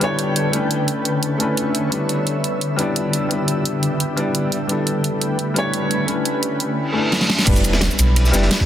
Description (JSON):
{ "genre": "liquid drum and bass", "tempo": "173 BPM", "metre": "4/4", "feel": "straight", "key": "E dorian", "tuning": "A4 = 440 Hz", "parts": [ { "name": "felt-muted upright piano", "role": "accompaniment", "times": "0.0-8.7 s", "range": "G3 to D5", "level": "-21 LUFS", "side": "left 1 dB", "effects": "digital delay" }, { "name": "shimmering ambient pad", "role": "sustained chords", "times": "0.0-8.7 s", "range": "D3 to B5", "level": "-23 LUFS", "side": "equal", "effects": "chorus, built-in reverb" }, { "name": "pop drum kit", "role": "drums", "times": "0.0-8.6 s", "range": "cabasa, crash cymbal, hi-hat, snare drum", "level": "-22 LUFS", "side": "right 2 dB", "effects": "none" }, { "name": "reverse cymbal and sub drop", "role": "sound effects", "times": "6.9-8.7 s", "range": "none", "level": "-23 LUFS", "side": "right 1 dB", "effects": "none" }, { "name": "sub bass with octave", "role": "bass", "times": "7.5-8.5 s", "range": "E1 to B1", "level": "-17 LUFS", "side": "equal", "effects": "none" }, { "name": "crunchy breakbeat drum kit", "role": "drums", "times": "7.5-8.7 s", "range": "hi-hat, ride cymbal, snare drum", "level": "-24 LUFS", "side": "right 1 dB", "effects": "high-pass filter on cymbals, high-pass filter on hats, high-pass filter on snare, high-pass filter on room" }, { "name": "electronic kick drum", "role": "drums", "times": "7.5-8.7 s", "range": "none", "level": "-17 LUFS", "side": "equal", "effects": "none" } ], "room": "moderate huge ambient reverb, RT60 4.7 s", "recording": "dense, heavily limited modern master", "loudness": "-17 LUFS", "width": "side -11 dB against mid", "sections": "0.0-7.5 A section; 7.5-8.7 B section", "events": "reverse cymbal 6.9-7.5; drum fill 7.1-7.5; drop 7.5-8.7; impact 7.5-8.7", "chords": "0.0 A9sus4; 0.5 Bm11; 1.9 Em7; 4.5 A9sus4; 6.1 Bm11; 7.5 Em7" }